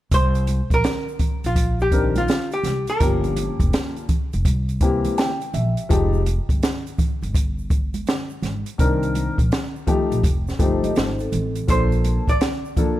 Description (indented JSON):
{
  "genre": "hip hop, jazz-hop",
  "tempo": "83 BPM",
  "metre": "4/4",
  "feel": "swing 65% on 16ths",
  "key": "C minor",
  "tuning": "A4 = 440 Hz",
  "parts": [
    { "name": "archtop guitar, miked and amplified", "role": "melody", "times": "0.1-5.0, 11.7-13.0 s", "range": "F4 to D5", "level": "-24 LUFS", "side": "right 1 dB", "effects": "none" },
    { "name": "upright bass", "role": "bass", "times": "0.1-12.4 s", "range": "F1 to C2", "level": "-23 LUFS", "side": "equal", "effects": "none" },
    { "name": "open jazz drum kit", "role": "drums", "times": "0.1-13.0 s", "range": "hi-hat, kick drum, snare drum", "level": "-22 LUFS", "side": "equal", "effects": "none" },
    { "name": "egg shaker and congas", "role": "percussion", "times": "0.1-13.0 s", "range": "none", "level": "-33 LUFS", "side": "right 5 dB", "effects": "none" },
    { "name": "dark grand piano", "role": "accompaniment", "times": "1.9-13.0 s", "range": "Eb3 to G5", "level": "-24 LUFS", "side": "left 3 dB", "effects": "none" },
    { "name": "vibraphone with soft mallets", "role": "second line", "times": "10.6-11.7 s", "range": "C4 to Eb5", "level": "-28 LUFS", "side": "equal", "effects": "none" }
  ],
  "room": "little or no reverb",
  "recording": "dry, gritty hardware recording",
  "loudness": "-18 LUFS",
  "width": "side -14 dB against mid",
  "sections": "0.1-13.0 A section",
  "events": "grand piano fill 4.8-5.9",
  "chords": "0.1 C7(no3); 3.0 Gm7b5; 4.5 C7; 5.9 Fmadd9; 8.8 Cm9; 10.2 F9; 11.7 Bbmaj7"
}